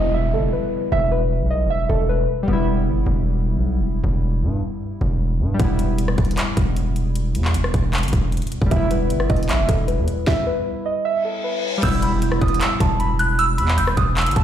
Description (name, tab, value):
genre	hip hop, trap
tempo	154 BPM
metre	4/4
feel	half-time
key	E harmonic minor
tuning	A4 = 440 Hz
part	muted felt-like synth keys	melody	0.0-2.5, 8.7-14.4 s	A4 to E6	-23 LUFS	right 1 dB	chorus, digital delay
part	warbly lo-fi synth keys	accompaniment	0.0-14.4 s	G3 to E4	-26 LUFS	left 2 dB	chorus
part	distorted 808-style bass	bass	0.0-14.4 s	E1 to G2	-20 LUFS	equal	distortion
part	downlifter, reverse cymbal and impact	sound effects	0.0-2.5, 11.2-13.4 s	none	-31 LUFS	equal	none
part	trap drum kit	drums	5.6-14.4 s	crash cymbal, handclaps, hi-hat, kick drum, rim click, snare drum	-22 LUFS	equal	none
part	delicate synth tine bell	second line	11.8-14.1 s	E6 to G6	-25 LUFS	right 1 dB	chorus, phaser, digital delay
room	digital ambience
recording	played on a big sound system in a bare room, large studio reverb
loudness	-18 LUFS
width	side -10 dB against mid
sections	0.0-11.8 A section; 11.8-14.4 B section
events	stop 10.3-11.8; reverse cymbal 11.2-11.8; impact 11.8-13.4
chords	0.0 Em